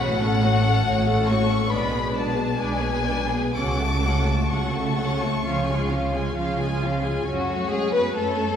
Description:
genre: classical, slow romantic movement for string orchestra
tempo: 60-71 BPM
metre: 4/4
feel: rubato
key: F# minor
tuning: A4 = 437 Hz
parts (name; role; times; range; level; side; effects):
- rich chamber violin section; melody; 0.0-8.6 s; C#5 to D6; -28 LUFS; left 5 dB; none
- warm symphonic violin section; second line; 0.0-8.6 s; E#4 to A5; -27 LUFS; left 3 dB; none
- rich chamber viola section; accompaniment; 0.0-8.6 s; E#3 to A4; -28 LUFS; equal; none
- rich chamber double bass section; bass; 0.0-8.6 s; A1 to F#2; -26 LUFS; right 1 dB; none
- warm chamber cello section; bass; 0.0-8.6 s; A2 to B3; -28 LUFS; right 2 dB; none
room: wet scoring stage reverb, RT60 1.6 s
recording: heard from further back in the room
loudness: -20 LUFS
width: side -8 dB against mid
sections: 0.0-7.3 A section; 7.3-8.6 B section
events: none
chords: 0.0 F#m/A; 1.7 G#dim/B; 3.6 F#m/C#; 5.4 C#; 7.3 F#m

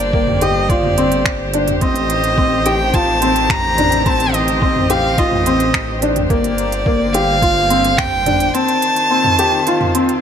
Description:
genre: piano and strings electronica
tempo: 107 BPM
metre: 4/4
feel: straight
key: G minor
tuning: A4 = 440 Hz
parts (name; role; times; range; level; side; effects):
- rich violin; melody; 0.0-10.2 s; D5 to Bb5; -17 LUFS; right 1 dB; ping-pong delay
- dark string quartet; sustained chords; 0.0-10.2 s; D3 to C5; -22 LUFS; left 2 dB; sidechain pumping
- dark detuned saw bass; bass; 0.0-8.5 s; G1 to A1; -22 LUFS; equal; sidechain pumping
- organic electronic drum kit; drums; 0.0-10.2 s; finger snaps, hi-hat, toms; -22 LUFS; right 2 dB; overdrive
- felt-muted upright piano; riff; 0.1-10.2 s; Bb3 to G4; -18 LUFS; left 2 dB; ping-pong delay
- electronic kick drum; drums; 0.1-8.1 s; none; -19 LUFS; equal; none
room: moderate concert hall reverb, RT60 2.0 s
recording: none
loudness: -13 LUFS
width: side -8 dB against mid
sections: 0.0-10.2 A section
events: none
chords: 0.0 Gm; 1.8 Am7b5; 6.3 Gm; 8.5 F7

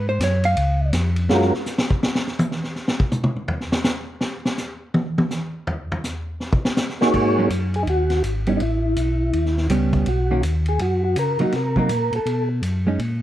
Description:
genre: soul jazz organ trio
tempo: 164 BPM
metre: 4/4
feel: swing 63% on 8ths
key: unclear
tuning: A4 = 440 Hz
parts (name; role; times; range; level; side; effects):
- hollow-body jazz guitar; accompaniment; 0.0-0.9, 7.4-13.0 s; D#3 to F5; -22 LUFS; right 2 dB; none
- mellow tonewheel organ; bass; 0.0-1.5, 7.1-13.2 s; Ab1 to C#3; -21 LUFS; equal; slow rotary speaker
- vintage drum kit; drums; 0.2-13.1 s; crash cymbal, hi-hat, kick drum, ride cymbal, snare drum, toms; -24 LUFS; equal; none
- percussive tonewheel organ; melody; 1.3-1.5, 7.0-12.5 s; Ab3 to Db5; -22 LUFS; equal; slow rotary speaker, plate reverb
room: light reverb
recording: dark, warm production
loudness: -19 LUFS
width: side -12 dB against mid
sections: 0.0-7.1 A section; 7.1-13.2 B section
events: hollow-body jazz guitar solo 0.0-7.1; drum solo 1.3-7.1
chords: 0.0 Gbsus2; 0.6 Db; 1.3 N.C.; 7.1 Ab9sus4; 8.6 A9; 10.1 Bmaj9; 11.5 Cm7b5; 12.3 Badd9

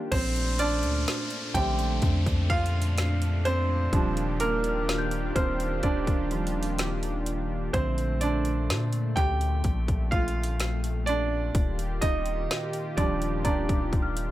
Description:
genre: contemporary R&B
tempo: 63 BPM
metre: 4/4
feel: straight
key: Bb major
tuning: A4 = 437 Hz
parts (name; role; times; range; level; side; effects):
- warm grand piano; accompaniment; 0.0-14.3 s; D3 to G5; -29 LUFS; right 3 dB; none
- warm analog pad; sustained chords; 0.0-14.3 s; Bb2 to G4; -34 LUFS; left 2 dB; chorus
- worn celesta; texture; 0.0-14.3 s; Bb5 to G6; -38 LUFS; left 5 dB; tape echo
- long sustained 808-style bass; bass; 0.1-14.3 s; Eb1 to Bb2; -29 LUFS; equal; none
- trap drum kit; drums; 0.1-14.3 s; crash cymbal, hi-hat, kick drum, snare drum; -29 LUFS; equal; none
- downlifter; sound effects; 0.1-7.7 s; none; -38 LUFS; left 1 dB; none
room: little or no reverb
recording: none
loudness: -24 LUFS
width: side -14 dB against mid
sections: 0.1-14.3 A section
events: grand piano solo 0.1-14.3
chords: 0.1 Bbmaj9; 3.9 Ebmaj7; 7.7 Bbmaj9; 11.5 Ebmaj7

